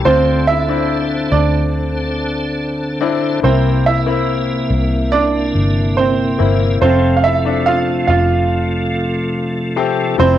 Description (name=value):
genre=pop ballad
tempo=71 BPM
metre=4/4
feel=straight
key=F major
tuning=A4 = 440 Hz
part: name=clear baby grand piano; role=accompaniment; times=0.0-10.4 s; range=C3 to G4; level=-21 LUFS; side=left 9 dB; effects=cassette tape
part: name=tonewheel organ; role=sustained chords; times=0.0-10.2 s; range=C3 to A4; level=-20 LUFS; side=equal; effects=chorus vibrato, slow rotary speaker, cassette tape
part: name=vintage muted fingered electric bass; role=bass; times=0.0-10.4 s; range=F1 to D2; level=-18 LUFS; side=left 1 dB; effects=none
part: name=clear baby grand piano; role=melody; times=0.1-10.4 s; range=C4 to F5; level=-17 LUFS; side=right 5 dB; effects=none
room=light reverb, studio reverb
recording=home recording on cassette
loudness=-13 LUFS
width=side -12 dB against mid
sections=0.0-10.2 A section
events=none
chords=0.1 Dm7; 3.4 C7; 6.8 Fmaj7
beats=| 0.05 0.90 1.74 2.59 | 3.43 4.28 5.12 5.97 | 6.82 7.66 8.51 9.35 | 10.20